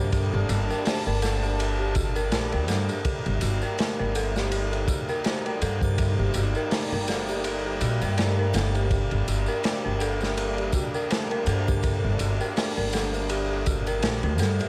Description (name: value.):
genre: trip hop.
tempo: 82 BPM.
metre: 4/4.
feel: swing 56% on 16ths.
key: G harmonic minor.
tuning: A4 = 440 Hz.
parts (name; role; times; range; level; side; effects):
rich studio violin section; sustained chords; 0.0-14.7 s; G3 to A5; -35 LUFS; equal; none.
dark detuned synth bell; arpeggios; 0.0-14.7 s; F#4 to C5; -32 LUFS; equal; chorus, analog delay.
upright bass; bass; 0.0-14.6 s; G1 to G2; -29 LUFS; equal; none.
crunchy breakbeat drum kit; drums; 0.1-14.7 s; hi-hat, kick drum, ride cymbal, snare drum; -31 LUFS; equal; none.
tambourine and triangle; percussion; 0.1-14.7 s; none; -44 LUFS; equal; none.
room: small room ambience.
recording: dry, gritty hardware recording, vinyl crackle.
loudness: -26 LUFS.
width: mono.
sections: 0.0-14.7 A section.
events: none.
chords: 0.0 Gm; 3.1 Eb/G; 8.9 Gm.